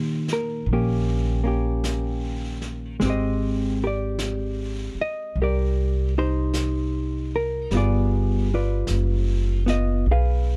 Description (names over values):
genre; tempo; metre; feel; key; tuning
jazz ballad; 51 BPM; 4/4; swing 66% on 8ths; unclear; A4 = 439 Hz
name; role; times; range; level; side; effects
hollow-body jazz guitar; accompaniment; 0.0-10.6 s; Eb3 to F5; -28 LUFS; equal; none
upright bass; bass; 0.0-10.6 s; Gb1 to Bb2; -26 LUFS; equal; none
vintage brush drum kit; drums; 0.3-10.6 s; brushed snare drum, hi-hat, snare drum; -40 LUFS; equal; none
room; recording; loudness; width
little or no reverb; dark, warm production; -24 LUFS; mono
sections
0.0-10.6 A section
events
none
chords
0.0 Eb7; 3.0 Abmaj9#11; 7.7 G7b9